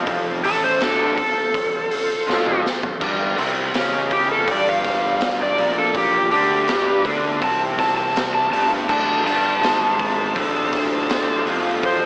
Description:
blues rock power trio and southern rock; 82 BPM; 4/4; straight; A4 = 440 Hz
overdriven tonewheel organ; sustained chords; 0.0-12.1 s; D4 to C#5; -31 LUFS; equal
raw garage guitar; riff; 0.0-12.1 s; D2 to D4; -22 LUFS; equal; overdrive, slapback echo
fuzz picked electric bass; bass; 0.0-12.1 s; D1 to D2; -28 LUFS; equal; overdrive
raw garage drum kit; drums; 0.1-12.0 s; crash cymbal, hi-hat, kick drum, snare drum, toms; -24 LUFS; equal
overdriven slide guitar; melody; 0.5-12.0 s; G4 to A5; -20 LUFS; equal
wet scoring stage reverb, RT60 1.8 s, small room ambience; big arena sound, AM radio sound; -17 LUFS; side -27 dB against mid
0.0-12.1 A section
electric slide guitar solo 0.0-12.1; drum fill 2.3-3.0
0.0 Dm7; 3.0 Gm7; 8.9 D7#9

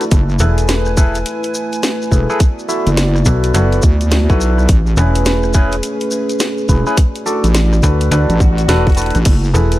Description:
glitch hop; 105 BPM; 4/4; swing 63% on 16ths; F# minor; A4 = 443 Hz
dark analog pad; sustained chords; 0.0-9.8 s; A3 to G#5; -21 LUFS; right 1 dB; chorus, sidechain pumping
overdriven tine electric piano; stabs; 0.0-9.8 s; C#4 to E5; -20 LUFS; left 1 dB; phaser, sidechain pumping, digital delay
drum and bass drum kit; drums; 0.0-9.8 s; crash cymbal, hi-hat, rim click, snare drum; -20 LUFS; equal
maracas; percussion; 0.0-9.8 s; -28 LUFS; left 2 dB
wobble bass; bass; 0.1-9.5 s; E1 to D2; -14 LUFS; equal; chorus
electronic kick drum; drums; 0.1-9.4 s; -12 LUFS; equal
slap-like FM bass; bass; 0.4-9.8 s; E1 to D2; -14 LUFS; equal
swell; sound effects; 8.4-9.3 s; -27 LUFS; left 5 dB
little or no reverb; dark, warm production; -11 LUFS; side -16 dB against mid
0.0-9.8 A section
swell 8.4-9.3
0.1 F#m11 (rootless); 2.4 D69; 4.7 Amaj9; 7.0 E9sus4; 9.3 F#m11

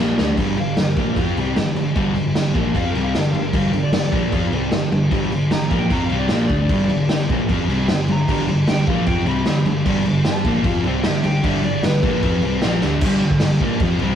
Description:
garage rock duo or trio; 152 BPM; 4/4; straight; A4 = 436 Hz
overdriven electric guitar; riff; 0.0-14.2 s; G2 to F4; -19 LUFS; equal
hollow-body short-scale picked electric bass; bass; 0.0-14.2 s; G1 to F2; -27 LUFS; equal
raw garage drum kit; drums; 0.2-14.1 s; crash cymbal, kick drum, snare drum; -21 LUFS; equal
electric slide guitar; melody; 0.6-13.0 s; G4 to B5; -28 LUFS; left 2 dB
light reverb; rough rehearsal-room recording, warm saturation; -16 LUFS; side -9 dB against mid
0.4-13.0 A section; 13.0-14.2 B section
drum fill 0.0-0.4, 12.8
0.0 G5

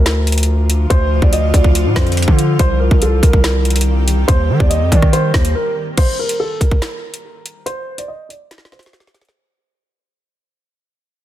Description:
hip hop, drill; 142 BPM; 4/4; half-time; A4 = 440 Hz
dark concert grand piano; melody; 0.0-9.3 s; A4 to Eb5; -21 LUFS; right 1 dB; low-pass filter, ping-pong delay
granular cloud pad; sustained chords; 0.4-6.0 s; D3 to G4; -23 LUFS; left 2 dB; built-in reverb
distorted 808-style bass; bass; 0.0-5.5 s; C2 to Eb3; -15 LUFS; equal; distortion
drill drum kit; drums; 0.1-9.4 s; crash cymbal, hi-hat, kick drum, rim click, snare drum; -14 LUFS; equal
digital ambience; dense, heavily limited modern master; -12 LUFS; side -13 dB against mid
0.0-6.0 A section; 6.0-9.4 B section
break 5.6-6.0; fade-out 6.0-9.4; filter sweep on grand piano 6.0-9.4; drum fill 8.5-9.4
0.0 Dm; 2.6 Cm; 4.3 Eb; 6.0 N.C.

